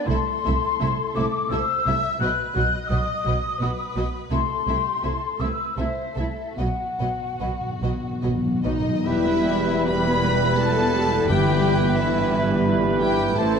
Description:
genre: classical, slow romantic movement for symphony orchestra.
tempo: 68-88 BPM.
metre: 3/4.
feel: rubato.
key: E minor.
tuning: A4 = 440 Hz.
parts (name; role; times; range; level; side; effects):
warm studio violin section; melody; 0.0-13.6 s; F#4 to B5; -31 LUFS; left 3 dB; none.
mellow hollow small flute group; second line; 0.0-13.6 s; D#4 to F#6; -26 LUFS; left 4 dB; none.
warm symphonic violin section; second line; 0.0-13.6 s; D#4 to E5; -32 LUFS; left 2 dB; none.
rich symphonic viola section; accompaniment; 0.0-13.6 s; F#3 to A4; -31 LUFS; right 1 dB; none.
rich studio double bass section; bass; 0.1-13.6 s; E1 to C2; -28 LUFS; right 3 dB; none.
warm symphonic cello section; bass; 0.1-13.6 s; E2 to C3; -30 LUFS; right 2 dB; none.
timpani; percussion; 6.6-12.3 s; G2 to B2; -27 LUFS; left 2 dB; none.
clear clarinet; second line; 8.6-13.6 s; D#4 to B4; -31 LUFS; left 1 dB; none.
clear oboe; second line; 9.0-13.6 s; B4 to C5; -33 LUFS; right 1 dB; none.
warm bassoon; accompaniment; 9.0-13.6 s; E3 to G3; -30 LUFS; right 1 dB; none.
mellow trombone section; sustained chords; 9.0-13.6 s; E3 to G3; -29 LUFS; right 3 dB; none.
mellow tuba; bass; 9.0-13.6 s; E1 to A1; -28 LUFS; right 3 dB; none.
clear French horn section; sustained chords; 9.1-13.6 s; A3 to E4; -30 LUFS; left 4 dB; none.
bright trumpet; stabs; 9.1-13.6 s; B4 to C5; -28 LUFS; right 2 dB; none.
room: wet recital hall reverb, RT60 1.8 s.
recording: dark, warm production.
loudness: -20 LUFS.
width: side -6 dB against mid.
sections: 0.0-9.1 A section; 9.1-13.6 B section.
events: timpani fill 6.6-9.1.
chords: 0.1 Am/C; 2.2 B; 4.3 Am/C; 6.6 B; 9.1 Em; 11.3 Em/G.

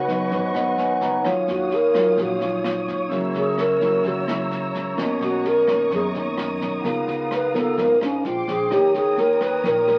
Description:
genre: bossa nova.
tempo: 129 BPM.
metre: 4/4.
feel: straight.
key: Eb minor.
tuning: A4 = 441 Hz.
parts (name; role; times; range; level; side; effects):
wooden-headed alto flute; melody; 0.0-10.0 s; Db4 to Cb5; -22 LUFS; equal; none.
nylon-string guitar; accompaniment; 0.0-10.0 s; F#2 to Bb4; -30 LUFS; equal; none.
vibraphone with soft mallets; accompaniment; 0.0-10.0 s; B3 to Bb5; -28 LUFS; equal; none.
warm studio string section; sustained chords; 0.0-10.0 s; Cb4 to Fb6; -32 LUFS; equal; none.
upright bass; bass; 0.0-10.0 s; Ab1 to F#2; -41 LUFS; equal; none.
jazz brush drum kit; drums; 0.1-9.9 s; kick drum, rim click, snare drum; -36 LUFS; equal; none.
room: wet studio reverb, RT60 0.6 s.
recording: very old 78 rpm record, vinyl crackle.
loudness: -22 LUFS.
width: mono.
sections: 0.0-10.0 A section.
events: alto flute solo 0.0-10.0; vibraphone fill 0.3-1.2.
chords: 0.0 Db9sus4; 1.2 Ebm9; 3.1 Gb7/Db; 5.0 Bmaj9; 6.8 Db13; 8.2 Bb13; 8.7 Eb7.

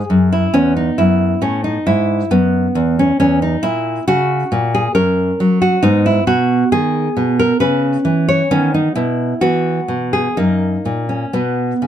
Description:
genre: classical, baroque-style dance for nylon-string guitar.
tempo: 67 BPM.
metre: 3/4.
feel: rubato.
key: E major.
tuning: A4 = 439 Hz.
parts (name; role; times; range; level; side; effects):
nylon-string guitar; solo; 0.0-11.9 s; E2 to C#5; -13 LUFS; equal; none.
room: light reverb.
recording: none.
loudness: -13 LUFS.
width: side -10 dB against mid.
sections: 0.0-11.9 A section.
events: none.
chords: 0.0 F#7sus2; 0.5 E; 3.2 C#m/E; 5.0 F#; 5.8 G#m; 7.6 C#m; 8.5 B/D#; 9.4 E5; 10.4 F#; 11.3 N.C..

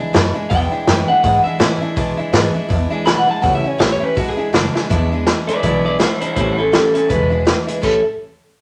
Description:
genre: rockabilly.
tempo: 164 BPM.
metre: 4/4.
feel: swing 59% on 8ths.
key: unclear.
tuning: A4 = 440 Hz.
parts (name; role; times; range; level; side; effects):
picked steel-string acoustic guitar; accompaniment; 0.0-8.0 s; E2 to E4; -23 LUFS; equal; none.
upright bass; bass; 0.0-8.0 s; E1 to B2; -24 LUFS; equal; none.
vintage drum kit; drums; 0.1-7.9 s; crash cymbal, hi-hat, kick drum, snare drum; -20 LUFS; equal; none.
electric guitar through a small old amp; melody; 0.5-8.0 s; C#4 to B5; -19 LUFS; equal; none.
room: wet studio reverb, RT60 0.7 s.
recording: none.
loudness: -16 LUFS.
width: mono.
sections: 0.0-4.9 A section; 4.9-7.8 B section.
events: drum fill 4.7.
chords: 0.0 E7; 3.4 A7; 4.2 E7; 6.4 A7; 7.1 E7; 7.8 A7.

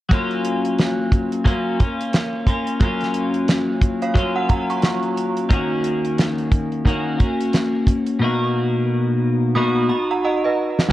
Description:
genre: indie pop, bedroom pop.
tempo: 89 BPM.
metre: 4/4.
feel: swing 60% on 16ths.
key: F# major.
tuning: A4 = 435 Hz.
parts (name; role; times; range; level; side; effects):
twelve-string electric guitar; accompaniment; 0.1-10.9 s; B2 to F#4; -20 LUFS; left 1 dB; wide subtle chorus, vibrato effect.
damped 70s drum kit; drums; 0.1-10.9 s; hi-hat, kick drum, snare drum; -18 LUFS; equal; none.
synth chime; second line; 4.0-5.5, 9.6-10.9 s; B4 to D#6; -24 LUFS; right 4 dB; ensemble chorus, lush chorus, tape echo.
warbly lo-fi synth keys; accompaniment; 10.9 s; F#3; -17 LUFS; right 4 dB; chorus.
room: moderate spring reverb, RT60 2.5 s.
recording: cassette tape.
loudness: -17 LUFS.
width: side -15 dB against mid.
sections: 0.1-10.9 A section.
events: drum fill 9.6-10.9.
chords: 0.1 F#maj7; 5.5 D#m7; 8.2 Bmaj7.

